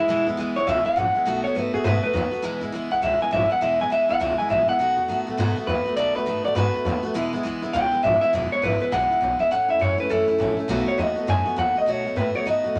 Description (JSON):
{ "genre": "rockabilly", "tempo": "204 BPM", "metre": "4/4", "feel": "swing 63% on 8ths", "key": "E major", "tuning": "A4 = 441 Hz", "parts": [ { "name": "electric guitar through a small old amp", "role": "melody", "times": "0.0-12.8 s", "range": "E4 to G#5", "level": "-24 LUFS", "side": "equal", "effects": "none" }, { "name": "picked steel-string acoustic guitar", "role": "accompaniment", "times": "0.0-12.8 s", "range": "E2 to F#4", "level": "-30 LUFS", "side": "equal", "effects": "none" }, { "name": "upright bass", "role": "bass", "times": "0.1-12.8 s", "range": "E1 to A2", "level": "-31 LUFS", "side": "equal", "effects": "none" } ], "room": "wet studio reverb, RT60 0.9 s", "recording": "none", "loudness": "-23 LUFS", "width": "mono", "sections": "0.0-8.3 A section; 8.3-12.8 B section", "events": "clean electric guitar solo 0.0-8.3", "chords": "0.0 E; 1.3 B7; 2.4 E; 4.8 B7; 7.2 E; 9.5 A; 10.7 B7", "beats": "| 0.08 0.38 0.67 0.96 | 1.26 1.55 1.85 2.15 | 2.44 2.73 3.03 3.32 | 3.62 3.91 4.21 4.50 | 4.80 5.09 5.39 5.68 | 5.98 6.27 6.57 6.86 | 7.16 7.45 7.74 8.04 | 8.33 8.63 8.92 9.22 | 9.51 9.81 10.10 10.40 | 10.69 10.99 11.28 11.58 | 11.87 12.17 12.46 12.76" }